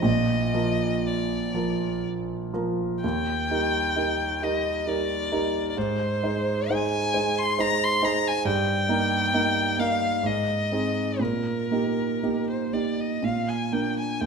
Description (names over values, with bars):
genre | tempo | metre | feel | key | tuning
classical, romantic duo for violin and grand piano | 58-71 BPM | 3/4 | rubato | Eb major | A4 = 441 Hz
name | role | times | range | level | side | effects
rich violin | melody | 0.0-14.3 s | Bb4 to C6 | -27 LUFS | left 3 dB | none
warm concert grand piano | accompaniment | 0.0-14.3 s | Bb1 to C5 | -25 LUFS | right 2 dB | none
room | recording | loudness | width
moderate recital hall reverb, RT60 1.4 s | none | -23 LUFS | side -5 dB against mid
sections
0.0-3.0 A section; 3.0-14.3 B section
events
none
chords
0.0 Bb; 3.0 Eb; 5.8 Ab; 8.4 Eb/G; 10.2 Ab; 11.2 Eb/Bb; 13.2 Bb